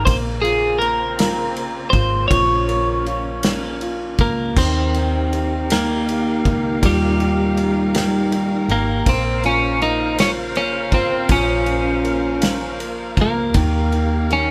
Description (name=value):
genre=six-eight pop ballad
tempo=53 BPM (dotted quarters)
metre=6/8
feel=straight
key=unclear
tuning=A4 = 440 Hz
part: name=twelve-string electric guitar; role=melody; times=0.0-14.5 s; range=G3 to Db5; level=-22 LUFS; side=equal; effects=none
part: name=warm concert grand piano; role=accompaniment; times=0.0-14.5 s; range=Bb2 to F4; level=-27 LUFS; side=equal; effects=none
part: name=muted studio string section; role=sustained chords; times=0.0-14.5 s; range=Db3 to F5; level=-30 LUFS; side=equal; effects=none
part: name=vintage muted fingered electric bass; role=bass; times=0.0-14.5 s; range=Ab1 to Eb2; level=-26 LUFS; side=equal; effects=none
part: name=loose indie drum kit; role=drums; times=0.1-14.5 s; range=crash cymbal, kick drum, ride cymbal, snare drum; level=-25 LUFS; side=equal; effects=none
room=moderate studio reverb, RT60 0.5 s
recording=band playing live in one room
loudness=-19 LUFS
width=mono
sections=0.0-4.6 A section; 4.6-14.5 A section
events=none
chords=0.1 Bbmadd9; 4.6 Ebadd9; 9.1 Bbmadd9; 13.6 Ebadd9